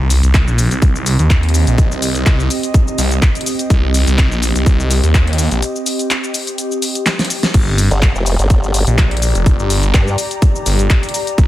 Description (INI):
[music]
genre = bass house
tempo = 125 BPM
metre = 4/4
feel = swing 54% on 16ths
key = unclear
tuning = A4 = 440 Hz
[part]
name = phased detuned saw bass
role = bass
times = 0.0-11.5 s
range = F1 to Eb2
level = -14 LUFS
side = equal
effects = phaser, tube saturation, sidechain pumping
[part]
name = airy breathy pad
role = texture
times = 0.0-11.5 s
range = C4 to Bb5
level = -23 LUFS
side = equal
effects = chorus, sidechain pumping
[part]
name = big-room dance drum kit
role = drums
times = 0.1-11.5 s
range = crash cymbal, handclaps, hi-hat, shaker, snare drum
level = -19 LUFS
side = left 1 dB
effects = none
[part]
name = electronic kick drum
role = drums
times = 0.3-11.5 s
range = none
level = -14 LUFS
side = equal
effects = none
[part]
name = formant-sweep wobble bass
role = bass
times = 7.9-10.2 s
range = F1 to G2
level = -15 LUFS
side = equal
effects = chorus, tube saturation, sidechain pumping
[sound]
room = little or no reverb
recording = dense, heavily limited modern master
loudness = -12 LUFS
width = side -15 dB against mid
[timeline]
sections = 0.0-11.5 A section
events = break 5.6-7.5; drum fill 7.1-7.5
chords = 0.0 Cm; 7.5 Gm